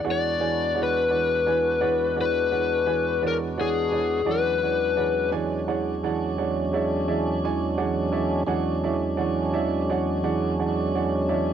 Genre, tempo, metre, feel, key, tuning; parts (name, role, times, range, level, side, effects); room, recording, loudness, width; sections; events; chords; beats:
blues; 57 BPM (dotted quarters); 12/8; straight; E mixolydian; A4 = 440 Hz
overdriven slide guitar; melody; 0.0-5.3 s; G#4 to D5; -23 LUFS; left 6 dB; cassette tape
clear grand piano; accompaniment; 0.0-11.5 s; E3 to G#5; -28 LUFS; right 8 dB
tonewheel organ; sustained chords; 0.0-11.5 s; E2 to F#4; -26 LUFS; right 1 dB; slow rotary speaker
light reverb; home recording on cassette; -22 LUFS; side -9 dB against mid
0.0-11.5 A section
0.0 E13
| 0.05 1.10 2.15 3.21 | 4.26 5.31 6.37 7.42 | 8.48 9.54 10.59